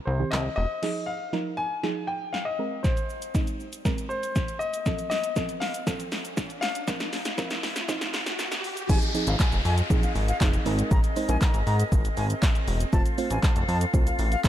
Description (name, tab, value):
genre	dance-pop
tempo	119 BPM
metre	4/4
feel	straight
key	F minor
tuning	A4 = 445 Hz
part	warm grand piano	melody	0.1-7.6 s	C5 to Ab5	-31 LUFS	left 3 dB	none
part	chorused synth bass	bass	0.1-0.7, 8.9-14.5 s	E1 to Ab2	-26 LUFS	equal	sidechain pumping
part	soft round pluck	accompaniment	0.2-14.5 s	Eb3 to C5	-33 LUFS	right 4 dB	chorus, sidechain pumping
part	punchy analog drum machine	drums	0.3-14.5 s	crash cymbal, handclaps, hi-hat, kick drum, shaker, snare drum	-26 LUFS	equal	none
part	riser and downlifter	sound effects	3.2-12.9 s	none	-36 LUFS	equal	none
part	breathy bright concert flute	melody	8.9-14.4 s	F5 to Bb5	-34 LUFS	left 2 dB	sidechain pumping, dub echo
part	flute section	sustained chords	8.9-14.5 s	C4 to F5	-34 LUFS	left 1 dB	sidechain pumping
room	light reverb, digital ambience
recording	dark, warm production, high-pass filter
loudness	-24 LUFS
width	side -12 dB against mid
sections	0.8-8.9 A section; 8.9-14.5 B section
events	build-up 0.8-8.9; drum fill 0.8-8.9; filter sweep 0.8-8.9; riser 3.2-8.9; drop 8.9-14.5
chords	0.0 Cm; 0.8 Fm7; 2.6 Abadd9; 4.9 F; 6.9 Bbsus2; 8.9 Fm7; 10.7 Abadd9; 12.9 F